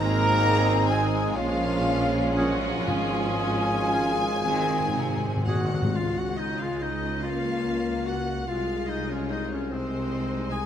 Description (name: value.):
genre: classical.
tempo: 38-51 BPM (dotted quarters).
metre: 6/8.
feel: rubato.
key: Db major.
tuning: A4 = 440 Hz.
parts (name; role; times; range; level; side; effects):
rich chamber violin section; melody; 0.0-10.7 s; C5 to Bb5; -33 LUFS; left 4 dB; none.
rich chamber violin section; second line; 0.0-10.7 s; Ab3 to Ab5; -34 LUFS; left 1 dB; none.
small flute group; second line; 0.0-5.4 s; F5 to Bb5; -33 LUFS; equal; none.
rich chamber viola section; accompaniment; 0.0-10.7 s; Ab3 to F4; -33 LUFS; right 2 dB; none.
warm bassoon; accompaniment; 0.0-5.2 s; Db4 to F4; -31 LUFS; right 1 dB; none.
mellow French horn section; sustained chords; 0.0-10.7 s; F3 to Bb3; -35 LUFS; left 4 dB; none.
warm trombone section; sustained chords; 0.0-5.6 s; Eb3 to Db4; -33 LUFS; right 4 dB; none.
dark trumpet section; stabs; 0.0-5.5 s; F4 to Bb4; -30 LUFS; equal; none.
rich symphonic cello section; bass; 0.0-10.7 s; C2 to Eb3; -32 LUFS; right 2 dB; none.
rich symphonic double bass section; bass; 0.0-10.7 s; Ab1 to Db2; -35 LUFS; right 2 dB; none.
warm tuba; bass; 0.0-10.7 s; Ab1 to Db2; -35 LUFS; right 3 dB; none.
warm clarinet; second line; 0.9-10.7 s; C4 to Ab4; -31 LUFS; left 2 dB; none.
warm oboe; second line; 0.9-5.7 s; Ab4; -38 LUFS; right 2 dB; none.
timpani; percussion; 2.9-5.9 s; Ab2; -30 LUFS; left 2 dB; none.
room: moderate scoring stage reverb, RT60 1.6 s.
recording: none.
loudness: -23 LUFS.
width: side -9 dB against mid.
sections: 0.0-6.0 A section; 6.0-10.7 B section.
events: timpani fill 4.4-6.0.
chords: 0.0 Ab; 1.4 Bbm7; 2.9 Db/Ab; 4.4 Ab; 6.0 Db; 8.5 Ab/C.